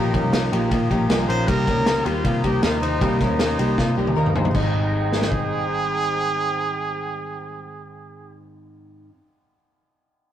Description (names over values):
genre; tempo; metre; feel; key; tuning
jangly indie pop; 157 BPM; 4/4; straight; Ab major; A4 = 436 Hz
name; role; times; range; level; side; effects
clear trumpet; melody; 0.0-8.4 s; Eb4 to C5; -26 LUFS; right 2 dB; none
picked steel-string acoustic guitar; accompaniment; 0.0-9.1 s; Ab2 to G4; -28 LUFS; right 2 dB; none
hollow soft pad; sustained chords; 0.0-8.4 s; Ab3 to Eb6; -31 LUFS; equal; chorus
direct-recorded clean electric guitar; arpeggios; 0.0-5.7 s; Bb3 to C5; -26 LUFS; left 4 dB; none
vintage muted picked electric bass; bass; 0.0-9.1 s; G1 to C3; -25 LUFS; equal; none
vintage drum kit; drums; 0.1-5.4 s; crash cymbal, kick drum, ride cymbal, snare drum, toms; -23 LUFS; equal; none
room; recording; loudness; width
moderate stone room reverb, RT60 1.2 s; rough rehearsal-room recording, warm saturation; -19 LUFS; side -10 dB against mid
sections
0.0-4.5 A section; 4.5-7.6 B section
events
drum fill 3.8-4.5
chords
0.0 Ebadd9/Bb; 1.5 Cm7; 4.5 Abmaj7